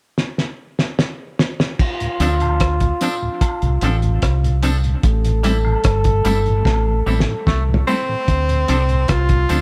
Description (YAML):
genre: roots reggae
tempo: 74 BPM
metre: 4/4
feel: straight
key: D minor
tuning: A4 = 440 Hz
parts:
  - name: cloth-damped thuddy drum kit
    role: drums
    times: 0.2-9.6 s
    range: crash cymbal, hi-hat, kick drum, rim click, snare drum, toms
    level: -21 LUFS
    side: equal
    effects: none
  - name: clear trombone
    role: second line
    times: 1.8-7.8 s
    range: F4 to A4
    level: -26 LUFS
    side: equal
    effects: dub echo
  - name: mellow tonewheel organ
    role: accompaniment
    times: 2.0-9.6 s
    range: D2 to D4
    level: -27 LUFS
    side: equal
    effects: chorus vibrato, stopped rotary speaker, dub echo
  - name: semi-hollow electric guitar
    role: accompaniment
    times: 2.2-9.6 s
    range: F3 to A4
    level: -31 LUFS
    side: equal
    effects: dub echo
  - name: deep dub fingered electric bass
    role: bass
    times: 2.2-9.6 s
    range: G1 to D2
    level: -20 LUFS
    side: equal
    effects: none
  - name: tambourine and woodblock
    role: percussion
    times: 2.2-9.6 s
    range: none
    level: -35 LUFS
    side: equal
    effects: none
  - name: clear tenor saxophone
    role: melody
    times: 7.5-9.6 s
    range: A3 to F4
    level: -23 LUFS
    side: equal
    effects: dub echo
room: little or no reverb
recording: none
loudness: -18 LUFS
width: mono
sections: 0.0-1.8 A section; 1.8-8.3 B section; 8.3-9.6 C section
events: drum fill 0.2-1.8, 6.7-8.3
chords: 0.0 N.C.; 1.8 Dm7; 5.0 Am7; 8.3 Dm7